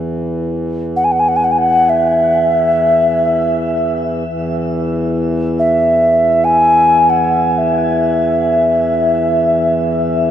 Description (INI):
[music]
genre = world meditative, free-time meditation music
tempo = free time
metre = none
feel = none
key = E major pentatonic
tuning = A4 = 441 Hz
[part]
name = pedal harmonium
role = drone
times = 0.0-10.3 s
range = E2 to E3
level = -18 LUFS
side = equal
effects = none
[part]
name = mellow hollow alto ocarina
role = melody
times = 1.0-10.3 s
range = E5 to G#5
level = -12 LUFS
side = equal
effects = shimmer reverb, tape echo
[sound]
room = wet cathedral reverb, RT60 6.2 s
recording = none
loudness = -12 LUFS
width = side -10 dB against mid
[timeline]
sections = 0.0-4.2 A section; 4.2-10.3 A section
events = none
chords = none